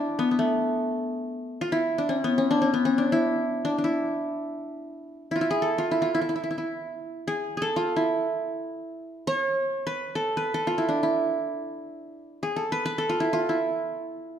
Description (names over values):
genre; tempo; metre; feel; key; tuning
Turkish makam ensemble; free time; none; none; E makam hicaz; A4 = 440 Hz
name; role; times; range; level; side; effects
qanun; solo; 0.0-14.4 s; A3 to C#5-40c; -24 LUFS; equal; none
room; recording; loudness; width
wet recital hall reverb, RT60 1.7 s; minimal, uncompressed stereo recording; -24 LUFS; side -9 dB against mid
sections
0.0-14.4 A section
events
none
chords
none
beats
free time